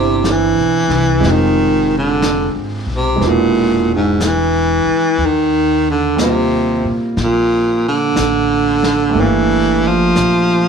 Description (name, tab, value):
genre	jazz ballad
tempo	60 BPM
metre	4/4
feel	swing 68% on 8ths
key	unclear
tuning	A4 = 439 Hz
part	clear baritone saxophone	melody	0.0-10.7 s	G#2 to F3	-14 LUFS	equal	plate reverb
part	clear baby grand piano	accompaniment	0.0-10.7 s	G3 to F5	-19 LUFS	right 5 dB	none
part	upright bass	bass	0.0-10.7 s	E1 to Bb2	-21 LUFS	left 1 dB	none
part	vintage brush drum kit	drums	0.2-10.7 s	brushed snare drum, hi-hat, snare drum	-26 LUFS	left 3 dB	none
room	moderate club reverb, RT60 0.8 s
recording	small room ambience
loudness	-12 LUFS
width	side -6 dB against mid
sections	0.0-10.7 A section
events	none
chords	0.0 Cmaj9; 1.2 Fm9; 3.2 E9; 5.2 Eb69; 9.2 Gm9